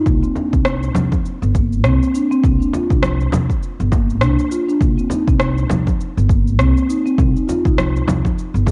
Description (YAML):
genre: organic downtempo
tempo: 101 BPM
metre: 4/4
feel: swing 58% on 16ths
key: C minor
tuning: A4 = 440 Hz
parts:
  - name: marimba with soft mallets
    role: arpeggios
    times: 0.0-8.7 s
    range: Bb3 to Ab4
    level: -22 LUFS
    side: equal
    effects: cassette tape, tape echo
  - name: upright bass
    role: bass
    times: 0.1-8.7 s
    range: G1 to C2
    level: -20 LUFS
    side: equal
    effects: tube saturation, sidechain pumping
  - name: electronic cabasa, rim click and congas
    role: drums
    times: 0.1-8.7 s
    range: none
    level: -24 LUFS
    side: equal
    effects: overdrive, cassette tape
  - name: electronic kick drum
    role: drums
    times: 0.1-8.7 s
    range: none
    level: -20 LUFS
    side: equal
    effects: overdrive, cassette tape
  - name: frame drum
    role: percussion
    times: 0.4-8.7 s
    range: none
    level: -29 LUFS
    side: equal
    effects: none
room: light reverb, studio ambience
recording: home recording on cassette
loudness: -17 LUFS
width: mono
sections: 0.0-8.7 A section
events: none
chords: 0.1 Csus2; 2.4 Gm7/C; 4.8 Eb6/C; 7.2 F7(no3)/C (rootless)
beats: | 0.06 0.65 1.25 1.84 | 2.44 3.03 3.62 4.22 | 4.81 5.41 6.00 6.59 | 7.19 7.78 8.38